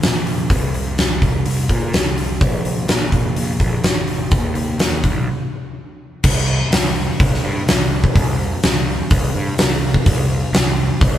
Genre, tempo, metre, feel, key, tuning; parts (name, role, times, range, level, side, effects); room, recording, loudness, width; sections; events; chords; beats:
hard rock; 126 BPM; 4/4; straight; C minor; A4 = 440 Hz
fuzz picked electric bass; bass; 0.0-11.2 s; Ab1 to Bb2; -21 LUFS; equal; overdrive
huge arena drum kit; drums; 0.0-11.1 s; crash cymbal, hi-hat, kick drum, snare drum; -16 LUFS; equal
light reverb; band playing live in one room; -15 LUFS; side -11 dB against mid
0.0-6.2 A section; 6.2-11.2 B section
break 5.3-6.2
0.01 | 0.49 0.97 1.45 1.93 | 2.41 2.89 3.37 3.84 | 4.32 4.80 5.28 5.76 | 6.24 6.72 7.19 7.67 | 8.15 8.63 9.10 9.58 | 10.06 10.53 11.01